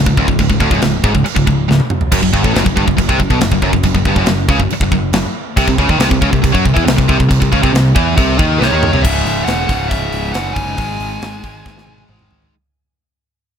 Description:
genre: heavy metal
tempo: 139 BPM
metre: 4/4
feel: straight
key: C# harmonic minor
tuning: A4 = 440 Hz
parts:
  - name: high-gain distorted guitar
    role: riff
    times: 0.0-12.5 s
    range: C#2 to G#3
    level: -14 LUFS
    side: equal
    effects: distortion
  - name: modern bright picked electric bass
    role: bass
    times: 0.0-12.5 s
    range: C#1 to Gb2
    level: -18 LUFS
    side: equal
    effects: none
  - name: tight metal drum kit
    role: drums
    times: 0.1-12.5 s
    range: china cymbal, crash cymbal, hi-hat, kick drum, snare drum, toms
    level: -16 LUFS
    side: equal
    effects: none
  - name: high-gain lead guitar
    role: melody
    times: 8.6-12.0 s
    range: C#5 to G#5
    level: -21 LUFS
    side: equal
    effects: distortion
room: little or no reverb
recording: none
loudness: -11 LUFS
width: side -8 dB against mid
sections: 0.0-9.0 A section; 9.0-12.5 B section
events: drum fill 1.7-2.1, 8.6-9.0, 11.7-12.5; fade-out 9.0-12.5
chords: 0.0 N.C.; 2.1 F#5; 5.6 Cm; 9.0 C#m; 10.8 G#5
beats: | 0.39 0.82 1.25 1.69 | 2.12 2.55 2.98 3.41 | 3.85 4.28 4.71 5.14 | 5.58 6.01 6.44 6.87 | 7.31 7.74 8.17 8.61 | 9.04 9.47 9.91 10.34 | 10.78 11.21 11.65 12.09

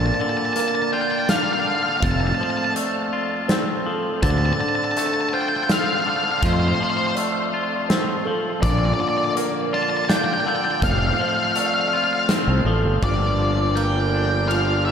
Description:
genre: post-rock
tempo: 82 BPM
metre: 3/4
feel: straight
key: F major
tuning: A4 = 440 Hz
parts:
  - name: octave-fuzz lead guitar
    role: melody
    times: 0.0-14.9 s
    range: C5 to A5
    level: -23 LUFS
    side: left 1 dB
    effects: distortion, tape echo
  - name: pedal steel guitar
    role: sustained chords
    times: 0.0-14.9 s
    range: F3 to Bb4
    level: -29 LUFS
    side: equal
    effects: none
  - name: electric guitar through a small old amp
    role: arpeggios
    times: 0.0-14.9 s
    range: F4 to F5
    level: -28 LUFS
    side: right 4 dB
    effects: analog chorus, tape echo
  - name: twangy electric guitar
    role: arpeggios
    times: 0.0-14.9 s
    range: F2 to F4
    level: -27 LUFS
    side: left 3 dB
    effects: tape echo
  - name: fuzz fingered electric bass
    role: bass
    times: 0.0-14.9 s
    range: F1 to F2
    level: -21 LUFS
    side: equal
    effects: overdrive
  - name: big rock drum kit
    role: drums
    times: 0.6-14.7 s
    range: hi-hat, kick drum, ride cymbal, snare drum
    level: -26 LUFS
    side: equal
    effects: none
room: wet huge ambient reverb, RT60 8.0 s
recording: dreamy mix soaked in reverb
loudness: -18 LUFS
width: side -7 dB against mid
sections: 0.0-13.0 A section; 13.0-14.9 B section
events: none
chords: 0.0 Bb; 2.0 F; 4.2 Dm7; 6.4 F; 8.6 Bb; 10.8 F; 13.0 Gm7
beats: 0.57 1.30 | 2.04 2.77 3.50 | 4.24 4.97 5.70 | 6.43 7.17 7.90 | 8.63 9.37 10.10 | 10.83 11.57 12.30 | 13.04 13.78 14.51

